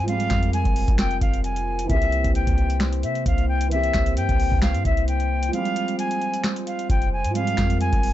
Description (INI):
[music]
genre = hip hop, trap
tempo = 132 BPM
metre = 4/4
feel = half-time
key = F harmonic minor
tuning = A4 = 440 Hz
[part]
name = silver concert flute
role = melody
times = 0.0-8.1 s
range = E5 to Ab5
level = -26 LUFS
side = left 1 dB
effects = ping-pong delay
[part]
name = dark concert grand piano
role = accompaniment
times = 0.0-8.1 s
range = E3 to G4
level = -29 LUFS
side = right 3 dB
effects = none
[part]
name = glass harmonica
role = sustained chords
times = 0.0-8.1 s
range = Bb3 to C5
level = -32 LUFS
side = left 3 dB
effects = none
[part]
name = clean 808-style bass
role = bass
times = 0.0-8.1 s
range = F1 to C3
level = -24 LUFS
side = equal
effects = none
[part]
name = booming analog drum machine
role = drums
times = 0.1-8.1 s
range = finger snaps, hi-hat, kick drum, snare drum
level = -23 LUFS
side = equal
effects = overdrive
[sound]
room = small room ambience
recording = dark, warm production, nothing above 7.9 kHz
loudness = -20 LUFS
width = side -13 dB against mid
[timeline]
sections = 0.0-8.1 A section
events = break 5.5-6.4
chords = 0.0 Fmadd9; 1.9 C7; 5.5 Fmadd9